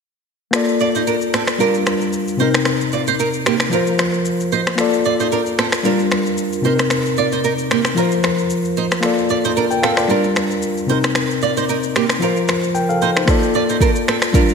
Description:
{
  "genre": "afrobeats",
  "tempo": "113 BPM",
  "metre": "4/4",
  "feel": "swing 55% on 16ths",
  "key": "Bb major",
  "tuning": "A4 = 440 Hz",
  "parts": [
    { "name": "tine electric piano", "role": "accompaniment", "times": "0.5-14.5 s", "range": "C3 to G5", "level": "-18 LUFS", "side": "left 3 dB", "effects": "overdrive, lush chorus" },
    { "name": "afro-pop drum kit", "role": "drums", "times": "0.5-14.5 s", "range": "finger snaps, kick drum, rim click, shaker", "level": "-21 LUFS", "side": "equal", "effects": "none" },
    { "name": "flamenco guitar", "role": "riff", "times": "0.8-14.5 s", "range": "Bb3 to D5", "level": "-21 LUFS", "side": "right 8 dB", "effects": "wide subtle chorus, ping-pong delay" }
  ],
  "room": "wet lush hall reverb, RT60 2.2 s",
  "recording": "bright 1980s-style digital production",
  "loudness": "-15 LUFS",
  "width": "side -5 dB against mid",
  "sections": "0.5-14.5 A section",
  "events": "none",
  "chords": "0.5 Bbmaj7; 1.6 Gm7; 2.4 Cm7; 3.7 Fsus4; 4.8 Bbmaj7; 5.8 Gm7; 6.6 Cm7; 8.0 Fsus4; 9.0 Bbmaj7; 10.1 Gm7; 10.9 Cm7; 12.2 Fsus4; 13.3 Bbmaj7",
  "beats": "| 0.54 1.07 1.60 2.13 | 2.66 3.19 3.72 4.25 | 4.78 5.31 5.84 6.38 | 6.91 7.44 7.97 8.50 | 9.03 9.56 10.09 10.62 | 11.15 11.69 12.22 12.75 | 13.28 13.81 14.34"
}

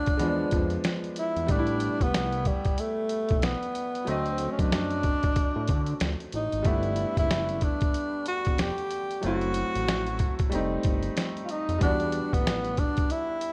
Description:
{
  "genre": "hip hop, jazz-hop",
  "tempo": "93 BPM",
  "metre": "4/4",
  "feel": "swing 60% on 16ths",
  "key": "E minor",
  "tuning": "A4 = 440 Hz",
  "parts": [
    { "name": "breathy tenor saxophone", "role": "melody", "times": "0.0-13.5 s", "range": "G3 to G4", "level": "-32 LUFS", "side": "equal", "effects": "none" },
    { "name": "bright grand piano", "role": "accompaniment", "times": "0.0-13.5 s", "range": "D3 to Eb5", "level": "-35 LUFS", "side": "equal", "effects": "none" },
    { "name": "lo-fi sampler-style drum kit", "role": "drums", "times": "0.1-13.5 s", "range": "hi-hat, kick drum, snare drum", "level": "-30 LUFS", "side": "equal", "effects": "none" },
    { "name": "fat analog bass", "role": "bass", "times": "0.2-12.8 s", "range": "E1 to D3", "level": "-34 LUFS", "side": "equal", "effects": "none" }
  ],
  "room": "light reverb",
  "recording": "none",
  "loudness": "-27 LUFS",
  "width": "mono",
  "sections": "0.0-13.5 A section",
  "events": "none",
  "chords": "0.2 E7b9; 1.5 Am9; 4.1 D7b9; 6.7 Gmaj7; 9.2 F#m7b5; 10.5 F9; 11.8 Em9",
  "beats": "0.20 0.85 | 1.49 2.14 2.78 3.43 | 4.07 4.72 5.36 6.01 | 6.66 7.30 7.95 8.59 | 9.23 9.88 10.53 11.17 | 11.82 12.46 13.11"
}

